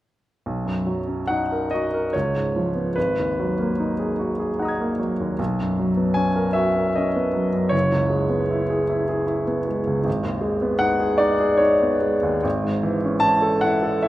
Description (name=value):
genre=classical, impressionist solo piano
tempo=70-80 BPM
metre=3/4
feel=rubato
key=B major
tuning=A4 = 440 Hz
part: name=clear baby grand piano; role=solo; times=0.5-14.1 s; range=F#1 to G#6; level=-19 LUFS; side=equal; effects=none
room=wet recital hall reverb, RT60 1.4 s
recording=none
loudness=-19 LUFS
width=side -15 dB against mid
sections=0.5-14.1 A section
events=none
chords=0.5 Bmaj9; 2.1 C#7; 3.0 G#m9; 5.4 Bmaj9; 7.7 F#9sus4; 10.1 G#m; 12.4 Amaj7/G#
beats=| 0.46 1.30 2.14 | 2.96 3.79 4.58 | 5.39 6.17 6.95 | 7.74 8.51 9.30 | 10.07 10.83 11.63 | 12.44 13.24 14.04